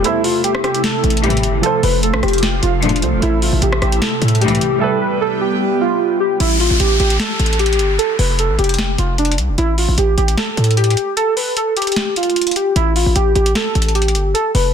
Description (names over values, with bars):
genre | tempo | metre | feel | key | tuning
hip hop, trap | 151 BPM | 4/4 | half-time | unclear | A4 = 440 Hz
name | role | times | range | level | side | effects
warbly lo-fi synth keys | melody | 0.0-14.7 s | D4 to B4 | -18 LUFS | equal | chorus, low-pass filter, tape echo
clear concert grand piano | accompaniment | 0.0-6.4 s | F3 to E5 | -24 LUFS | right 6 dB | low-pass filter
airy breathy pad | sustained chords | 0.0-6.4 s | C3 to G4 | -22 LUFS | right 2 dB | chorus, phaser
warm studio string section | stabs | 0.0-4.8 s | C2 to F3 | -23 LUFS | left 5 dB | tape echo
hard-hitting 808-style bass | bass | 0.0-14.7 s | F1 to A2 | -16 LUFS | equal | none
booming analog drum machine | drums | 0.0-14.6 s | crash cymbal, hi-hat, rim click, snare drum | -21 LUFS | left 1 dB | overdrive, vintage 12-bit sampler grit
downlifter | sound effects | 6.4-9.6 s | none | -23 LUFS | equal | none
room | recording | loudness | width
light reverb, digital ambience | dense, heavily limited modern master | -13 LUFS | side -8 dB against mid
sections
0.0-6.4 A section; 6.4-14.7 B section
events
break 0.0-0.8; drums muted 4.8-6.4; kick muted 11.2-12.8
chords
0.0 Am; 1.6 F; 3.2 Am; 4.8 Em; 6.4 Fadd9 (rootless); 8.0 F; 9.6 Fadd9/A (rootless); 11.2 N.C.; 12.8 Fadd9 (rootless)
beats
| 0.04 0.44 0.84 1.24 | 1.63 2.03 2.43 2.83 | 3.22 3.62 4.02 4.42 | 4.81 5.21 5.61 6.00 | 6.40 6.80 7.20 7.59 | 7.99 8.39 8.79 9.18 | 9.58 9.98 10.38 10.77 | 11.17 11.57 11.96 12.36 | 12.76 13.16 13.55 13.95 | 14.35